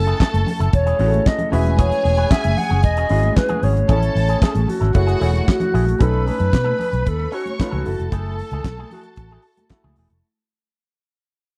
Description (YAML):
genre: disco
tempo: 114 BPM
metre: 4/4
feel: straight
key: F# dorian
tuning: A4 = 441 Hz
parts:
  - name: wooden-headed alto flute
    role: melody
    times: 0.0-9.7 s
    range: F#4 to F#5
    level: -25 LUFS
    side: equal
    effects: none
  - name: warm symphonic violin section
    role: second line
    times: 0.0-10.2 s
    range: F#4 to C#6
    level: -31 LUFS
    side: equal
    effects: none
  - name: warm grand piano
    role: accompaniment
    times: 0.0-10.3 s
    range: G#3 to C#5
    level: -30 LUFS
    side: equal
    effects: none
  - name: vintage muted fingered electric bass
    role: bass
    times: 0.0-10.2 s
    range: E1 to B2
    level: -21 LUFS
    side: equal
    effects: none
  - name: electric guitar with an envelope filter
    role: accompaniment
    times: 0.1-10.2 s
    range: A3 to B4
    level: -34 LUFS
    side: equal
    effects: none
  - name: damped 70s drum kit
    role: drums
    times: 0.1-10.2 s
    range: handclaps, hi-hat, kick drum, snare drum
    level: -18 LUFS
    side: equal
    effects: none
  - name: congas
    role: percussion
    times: 0.2-10.2 s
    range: none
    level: -31 LUFS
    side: equal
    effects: none
room: studio ambience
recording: dry, close 1970s-style studio recording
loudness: -18 LUFS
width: mono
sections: 0.0-6.0 A section; 6.0-10.2 B section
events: fade-out 6.0-10.2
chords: 0.0 F#m9; 1.5 E69; 3.9 Amaj7; 4.9 F#m9; 6.0 B9; 7.9 F#m9